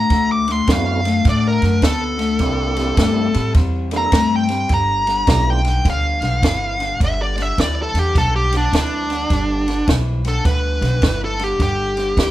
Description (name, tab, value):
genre	electric blues shuffle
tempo	104 BPM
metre	4/4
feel	swing 64% on 8ths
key	G mixolydian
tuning	A4 = 440 Hz
part	smooth overdriven lead guitar	melody	0.0-12.3 s	D4 to D6	-20 LUFS	equal	none
part	electric guitar through a small old amp	riff	0.0-12.3 s	G2 to B3	-23 LUFS	left 4 dB	none
part	upright bass	bass	0.0-12.3 s	G1 to A2	-21 LUFS	equal	none
part	compact cocktail drum kit	drums	0.1-12.3 s	kick drum, ride cymbal, snare drum	-19 LUFS	right 1 dB	none
part	tonewheel organ	accompaniment	0.7-5.6 s	A3 to A4	-25 LUFS	right 4 dB	slow rotary speaker
room	light reverb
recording	band playing live in one room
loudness	-15 LUFS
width	side -14 dB against mid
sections	0.0-7.0 A section; 7.0-12.3 B section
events	lead electric guitar solo 0.0-7.0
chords	0.0 D9; 2.4 C9; 4.7 G9; 7.0 G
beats	| 0.10 0.67 1.25 1.83 | 2.40 2.98 3.55 4.13 | 4.70 5.28 5.85 6.43 | 7.00 7.58 8.15 8.73 | 9.30 9.88 10.45 11.03 | 11.60 12.17